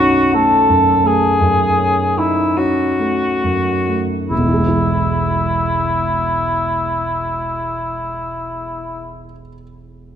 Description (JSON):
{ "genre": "classical, romantic duo for cor anglais and grand piano", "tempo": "33-45 BPM", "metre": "4/4", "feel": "rubato", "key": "E major", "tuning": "A4 = 440 Hz", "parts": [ { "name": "dark cor anglais", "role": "melody", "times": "0.0-9.2 s", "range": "E4 to A4", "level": "-16 LUFS", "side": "left 1 dB", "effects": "none" }, { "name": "warm concert grand piano", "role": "accompaniment", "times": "0.0-10.2 s", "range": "E1 to E4", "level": "-19 LUFS", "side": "right 1 dB", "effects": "none" } ], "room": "wet scoring stage reverb, RT60 1.9 s", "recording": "none", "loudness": "-14 LUFS", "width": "side -9 dB against mid", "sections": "0.0-4.3 A section; 4.3-10.2 B section", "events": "slowing down 0.0-4.3", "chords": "0.0 B9; 4.3 E" }